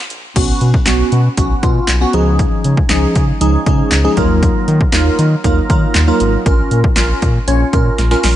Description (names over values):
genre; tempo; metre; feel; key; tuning
dance-pop; 118 BPM; 4/4; straight; Eb minor; A4 = 440 Hz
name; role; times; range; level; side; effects
round analog bass; bass; 0.1-8.4 s; Ab1 to Eb3; -14 LUFS; equal; sidechain pumping
punchy analog drum machine; drums; 0.1-8.4 s; crash cymbal, handclaps, hi-hat, kick drum, snare drum; -16 LUFS; equal; none
glassy digital keys; accompaniment; 0.4-8.4 s; F3 to Db5; -16 LUFS; right 1 dB; chorus, sidechain pumping
room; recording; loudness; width
little or no reverb; high-pass filter, nothing above 10.4 kHz; -11 LUFS; side -12 dB against mid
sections
0.4-8.4 A section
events
drum fill 0.0-0.4, 8.0-8.4; drop 0.4-8.4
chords
0.4 Bsus2; 2.1 Dbadd9; 4.2 Ebmadd9; 6.5 Bbm